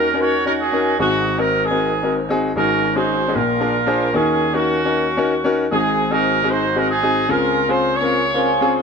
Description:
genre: gospel.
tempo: 152 BPM.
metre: 4/4.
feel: swing 65% on 8ths.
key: unclear.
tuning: A4 = 445 Hz.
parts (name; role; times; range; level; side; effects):
warm horn section; melody; 0.0-8.8 s; Bb3 to Db5; -18 LUFS; right 2 dB; none.
warm baby grand piano; accompaniment; 0.0-8.8 s; Ab1 to Db5; -19 LUFS; left 2 dB; none.
room: moderate plate reverb, RT60 2.7 s.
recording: none.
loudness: -16 LUFS.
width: side -5 dB against mid.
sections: 0.0-8.8 A section.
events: none.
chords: 0.0 Ebm7; 1.0 Ab7; 2.6 Ab7sus4; 3.4 Bb7; 4.1 Ebm7; 5.7 Ab7; 7.3 Dbmaj7.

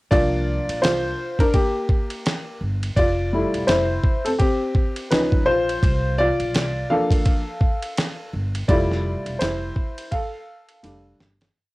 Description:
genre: hip hop, jazz-hop.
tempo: 84 BPM.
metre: 4/4.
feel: swing 59% on 16ths.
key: F major.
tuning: A4 = 439 Hz.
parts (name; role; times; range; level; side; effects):
warm upright piano; accompaniment; 0.1-11.3 s; F3 to F5; -22 LUFS; left 1 dB; cassette tape.
upright bass; bass; 0.1-11.5 s; E1 to Db2; -26 LUFS; equal; transformer saturation.
dusty soul sampler-style drum kit; drums; 0.1-11.5 s; hi-hat, kick drum, ride cymbal, snare drum; -22 LUFS; equal; cassette tape.
room: light reverb.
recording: home recording on cassette.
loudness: -19 LUFS.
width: side -21 dB against mid.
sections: 0.1-11.5 A section.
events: upright piano solo 0.1-11.5; fade-out 8.7-11.5; drum fill 10.1-11.5.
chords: 0.1 C9sus4; 3.0 Fmaj9; 5.1 Db9; 5.8 C9sus4; 8.7 Fmaj9; 10.8 F69.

